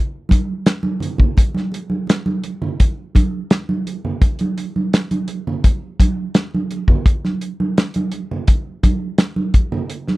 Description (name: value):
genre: soul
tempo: 84 BPM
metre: 4/4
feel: straight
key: none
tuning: none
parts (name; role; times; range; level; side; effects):
- warm soul drum kit; drums; 0.3-10.2 s; hi-hat, kick drum, snare drum; -14 LUFS; equal; none
- congas; percussion; 0.3-10.2 s; none; -22 LUFS; right 2 dB; none
room: little or no reverb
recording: dry, close 1970s-style studio recording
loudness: -16 LUFS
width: side -20 dB against mid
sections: 0.0-10.2 A section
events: none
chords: none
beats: 0.66 | 1.37 2.08 2.79 3.50 | 4.21 4.92 5.63 6.35 | 7.06 7.77 8.48 9.19 | 9.90